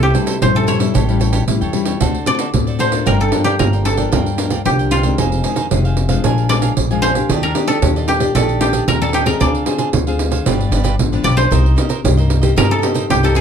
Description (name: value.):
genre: samba and choro.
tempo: 114 BPM.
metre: 4/4.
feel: straight.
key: G minor from 3.1 s.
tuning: A4 = 440 Hz.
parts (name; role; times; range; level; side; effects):
koto; melody; 0.0-13.4 s; F4 to D5; -18 LUFS; equal; slapback echo.
cavaquinho; accompaniment; 0.0-13.4 s; D4 to Ab5; -25 LUFS; right 5 dB; none.
nylon-string guitar; accompaniment; 0.0-13.4 s; F2 to Bb4; -20 LUFS; left 6 dB; none.
upright bass; bass; 0.0-13.4 s; F1 to G2; -18 LUFS; equal; none.
pandeiro; percussion; 0.0-13.4 s; none; -19 LUFS; right 6 dB; none.
room: moderate small room reverb, RT60 0.5 s.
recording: none.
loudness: -13 LUFS.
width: side -8 dB against mid.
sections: 0.0-3.1 A section; 3.1-13.4 B section.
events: none.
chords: 0.0 C6; 0.9 A7; 2.0 D7; 3.1 Gm7; 5.2 Fm7; 6.2 Bb7; 7.3 Ebmaj7; 9.4 Dm7b5; 10.5 G7; 11.5 Cm7.